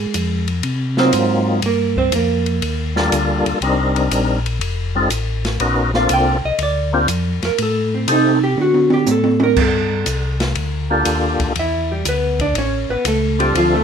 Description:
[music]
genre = soul jazz organ trio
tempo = 121 BPM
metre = 4/4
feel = swing 69% on 8ths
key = unclear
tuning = A4 = 439 Hz
[part]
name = vintage hollow-body jazz guitar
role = accompaniment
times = 0.0-2.9, 6.0-13.8 s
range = F3 to G5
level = -18 LUFS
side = right 2 dB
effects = none
[part]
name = mellow tonewheel organ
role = bass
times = 0.0-13.8 s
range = F1 to D3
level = -20 LUFS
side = left 1 dB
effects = chorus vibrato, slow rotary speaker
[part]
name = open jazz drum kit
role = drums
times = 0.1-13.7 s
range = crash cymbal, hi-hat, kick drum, ride cymbal, snare drum, toms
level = -22 LUFS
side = right 1 dB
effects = none
[part]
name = percussive tonewheel organ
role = melody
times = 1.0-13.8 s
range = Gb3 to Bb4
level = -17 LUFS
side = left 2 dB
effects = slow rotary speaker, overdrive, chorus vibrato
[sound]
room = light reverb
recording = minimal, uncompressed stereo recording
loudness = -15 LUFS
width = side -7 dB against mid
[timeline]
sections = 0.0-9.6 A section; 9.6-13.8 A section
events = hollow-body jazz guitar solo 0.0-13.8; drum fill 8.6-9.6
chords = 0.0 Ab13; 1.6 Gm9; 3.6 Cm7; 4.6 F7; 5.6 Bbmaj7; 7.6 Am7b5; 8.6 D5; 9.6 Gm9; 11.6 Em7; 12.6 A7

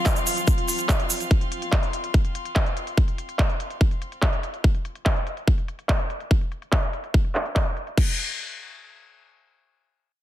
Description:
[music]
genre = psychedelic trance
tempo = 144 BPM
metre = 4/4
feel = straight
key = unclear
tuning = A4 = 440 Hz
[part]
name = pulsing gated texture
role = sustained chords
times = 0.0-1.4 s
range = F3 to F4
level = -35 LUFS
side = right 1 dB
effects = chorus, built-in reverb, sidechain pumping
[part]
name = warm chamber string section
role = texture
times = 0.0-4.6 s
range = C4 to C6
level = -31 LUFS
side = left 1 dB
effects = sidechain pumping
[part]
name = big-room dance drum kit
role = drums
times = 0.1-8.1 s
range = crash cymbal, handclaps, hi-hat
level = -28 LUFS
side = equal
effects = overdrive, low-pass filter on hats, small room reverb, low-pass filter on snare, low-pass filter on cymbals
[part]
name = electronic kick drum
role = drums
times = 0.1-8.1 s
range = none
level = -21 LUFS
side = equal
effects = small room reverb
[part]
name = egg shaker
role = percussion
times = 0.1-1.3 s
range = none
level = -28 LUFS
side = right 5 dB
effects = none
[sound]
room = digital ambience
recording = dense, heavily limited modern master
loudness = -21 LUFS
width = side -13 dB against mid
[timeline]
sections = 0.0-8.0 A section; 8.0-10.2 B section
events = fade-out on string section 0.0-4.6; filter sweep on drum 0.0-8.0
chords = 0.0 F5; 8.0 N.C.

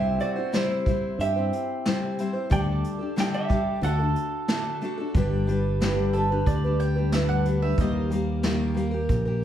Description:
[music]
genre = acoustic folk duo or small band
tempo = 91 BPM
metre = 4/4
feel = straight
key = unclear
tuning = A4 = 441 Hz
[part]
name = vintage hollow-body jazz guitar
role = melody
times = 0.0-4.8 s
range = C5 to G5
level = -29 LUFS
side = right 3 dB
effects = plate reverb
[part]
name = mandolin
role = second line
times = 0.0-8.1 s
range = E4 to G5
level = -33 LUFS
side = right 3 dB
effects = none
[part]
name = picked steel-string acoustic guitar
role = accompaniment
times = 0.0-9.4 s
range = G2 to C5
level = -27 LUFS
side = left 1 dB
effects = none
[part]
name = fingered electric bass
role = bass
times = 0.0-9.4 s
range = G1 to G2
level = -26 LUFS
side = equal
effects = none
[part]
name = vintage brush drum kit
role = drums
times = 0.2-9.2 s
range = hi-hat, kick drum, snare drum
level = -27 LUFS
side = right 1 dB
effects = none
[sound]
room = moderate large studio reverb, RT60 0.9 s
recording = heard from further back in the room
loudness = -22 LUFS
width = side -10 dB against mid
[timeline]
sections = 0.0-5.1 A section; 5.1-9.4 B section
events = mandolin solo 5.1-9.4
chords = 0.0 C; 2.5 Dsus4; 3.8 D; 5.1 G; 7.8 Eb

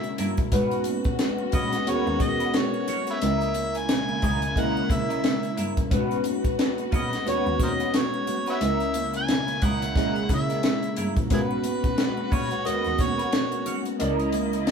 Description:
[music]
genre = lush 1970s-style soul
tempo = 89 BPM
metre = 4/4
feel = swing 58% on 16ths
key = C# dorian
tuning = A4 = 440 Hz
[part]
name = overdriven harmonica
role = melody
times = 0.0-13.7 s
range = E4 to G#5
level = -29 LUFS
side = equal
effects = none
[part]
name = mellow tine electric piano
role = accompaniment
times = 0.0-14.7 s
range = G#3 to D#5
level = -28 LUFS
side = equal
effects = phaser
[part]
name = dark chamber string section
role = sustained chords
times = 0.0-14.7 s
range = C#3 to D#5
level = -35 LUFS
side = left 2 dB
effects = none
[part]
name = compact cocktail drum kit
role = drums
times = 0.0-14.7 s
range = hi-hat, kick drum, snare drum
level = -26 LUFS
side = equal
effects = none
[part]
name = triangle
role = percussion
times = 0.0-14.7 s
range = none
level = -45 LUFS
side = left 3 dB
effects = none
[part]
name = electric guitar through a small old amp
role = riff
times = 0.2-14.7 s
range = C#4 to E5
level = -34 LUFS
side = right 1 dB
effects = wah
[part]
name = muted cello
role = bass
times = 0.2-14.7 s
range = C#2 to C#3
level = -31 LUFS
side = equal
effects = none
[part]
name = congas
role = percussion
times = 0.2-14.5 s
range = none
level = -39 LUFS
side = right 8 dB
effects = none
[sound]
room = light reverb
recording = band playing live in one room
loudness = -22 LUFS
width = side -6 dB against mid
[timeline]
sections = 0.0-14.7 A section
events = none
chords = 0.0 C#m6; 0.5 G#m11; 3.2 C#m69; 5.9 G#m11; 8.6 C#m69; 11.3 G#m11; 14.0 C#m69

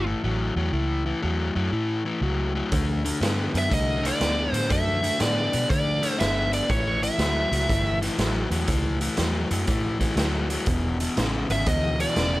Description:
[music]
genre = electric blues shuffle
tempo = 121 BPM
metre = 4/4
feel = swing 66% on 8ths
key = A mixolydian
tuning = A4 = 441 Hz
[part]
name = dark smooth lead guitar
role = melody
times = 0.0, 3.6-8.0, 11.5-12.4 s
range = C#5 to E5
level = -26 LUFS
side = right 1 dB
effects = overdrive
[part]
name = crunchy overdriven guitar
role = riff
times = 0.0-12.4 s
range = E2 to B3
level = -27 LUFS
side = left 2 dB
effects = none
[part]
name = vintage muted fingered electric bass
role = bass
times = 0.0-12.4 s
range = E1 to D3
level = -27 LUFS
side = equal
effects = none
[part]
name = raw garage drum kit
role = drums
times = 2.7-12.3 s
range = hi-hat, kick drum, snare drum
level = -27 LUFS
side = right 1 dB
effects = none
[sound]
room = light reverb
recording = none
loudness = -22 LUFS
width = side -18 dB against mid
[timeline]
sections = 0.0-12.4 A section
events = none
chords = 0.0 A; 2.7 D; 6.7 A; 10.7 E7(no3)

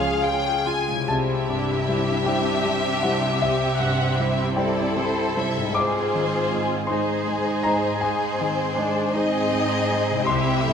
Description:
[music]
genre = cinematic, emotional film score for orchestra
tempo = 52 BPM (dotted quarters)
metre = 6/8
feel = rubato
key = unclear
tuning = A4 = 440 Hz
[part]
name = clear studio violin section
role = melody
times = 0.0-1.1 s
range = E#5 to G#5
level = -26 LUFS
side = left 5 dB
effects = none
[part]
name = mellow clarinet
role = second line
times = 0.0-0.7 s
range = G#4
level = -32 LUFS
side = equal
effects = none
[part]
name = rich studio violin section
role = second line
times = 0.0-10.7 s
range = G4 to E5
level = -25 LUFS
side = left 2 dB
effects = none
[part]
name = silver concert flute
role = second line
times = 0.0-0.7 s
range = E#5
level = -31 LUFS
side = right 2 dB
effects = none
[part]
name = clear concert grand piano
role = accompaniment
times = 0.0-10.7 s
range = C2 to D6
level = -25 LUFS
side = left 1 dB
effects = none
[part]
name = rich studio viola section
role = accompaniment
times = 0.0-10.7 s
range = A3 to F#5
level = -28 LUFS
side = right 2 dB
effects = none
[part]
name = concert harp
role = arpeggios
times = 0.0-10.7 s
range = Ab2 to G5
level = -30 LUFS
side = left 7 dB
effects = none
[part]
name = rich studio double bass section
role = bass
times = 0.0-0.8 s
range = C#2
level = -33 LUFS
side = right 4 dB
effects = none
[part]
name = warm studio cello section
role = bass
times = 1.1-10.7 s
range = Ab2 to C3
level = -29 LUFS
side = right 4 dB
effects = none
[sound]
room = wet concert hall reverb, RT60 1.9 s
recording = none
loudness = -20 LUFS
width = side -7 dB against mid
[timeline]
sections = 0.0-1.1 A section; 1.1-10.7 B section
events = none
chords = 0.0 C#; 1.1 C; 5.7 Ab

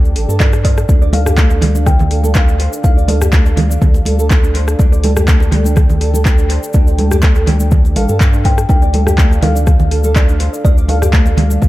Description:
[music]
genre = afro house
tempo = 123 BPM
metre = 4/4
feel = straight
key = D minor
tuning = A4 = 440 Hz
[part]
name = dark analog pad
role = sustained chords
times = 0.0-11.7 s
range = D4 to G5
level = -26 LUFS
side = equal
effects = chorus, sidechain pumping
[part]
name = round analog bass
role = bass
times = 0.0-11.7 s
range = A1 to G2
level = -14 LUFS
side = equal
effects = sidechain pumping
[part]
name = cabasa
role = percussion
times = 0.1-11.7 s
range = none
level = -30 LUFS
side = left 4 dB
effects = none
[part]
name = nylon-string guitar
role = arpeggios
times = 0.2-11.6 s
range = A3 to D5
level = -22 LUFS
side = right 2 dB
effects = sidechain pumping, analog delay
[part]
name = afro-pop drum kit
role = drums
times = 0.2-11.5 s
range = handclaps, hi-hat, rim click, toms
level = -21 LUFS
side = equal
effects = studio reverb, tape echo
[part]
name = kalimba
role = melody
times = 0.4-4.5, 8.0-11.7 s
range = D5 to G5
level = -23 LUFS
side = left 2 dB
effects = analog delay
[part]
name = electronic kick drum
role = drums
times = 0.4-11.7 s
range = none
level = -11 LUFS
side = equal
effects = overdrive, studio reverb
[part]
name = congas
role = percussion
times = 0.9-11.7 s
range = none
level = -19 LUFS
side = right 2 dB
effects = none
[sound]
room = studio reverb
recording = echo-heavy mix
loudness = -9 LUFS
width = side -17 dB against mid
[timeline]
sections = 0.0-11.7 A section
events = none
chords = 0.0 Dm

